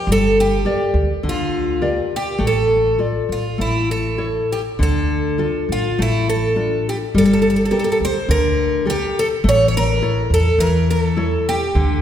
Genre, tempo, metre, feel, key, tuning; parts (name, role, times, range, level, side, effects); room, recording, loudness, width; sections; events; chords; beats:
fado-style ballad; 103 BPM; 4/4; rubato; D minor; A4 = 444 Hz
picked twelve-string acoustic guitar; melody; 0.0-12.0 s; E4 to C#5; -19 LUFS; right 1 dB
nylon-string guitar; accompaniment; 0.1-12.0 s; D3 to D5; -21 LUFS; left 2 dB
upright bass; bass; 0.1-12.0 s; G1 to E2; -21 LUFS; equal
wet concert hall reverb, RT60 1.8 s; heard from further back in the room; -16 LUFS; side -10 dB against mid
0.0-12.0 A section
0.1 Gm; 2.4 Dm/A; 3.6 A; 4.8 Dm; 7.2 Gmadd9; 9.4 A
| 0.07 0.64 1.23 1.81 | 2.39 2.98 3.58 4.18 | 4.79 5.39 5.98 6.57 | 7.15 7.72 8.29 8.87 | 9.44 10.02 10.59 11.17 | 11.75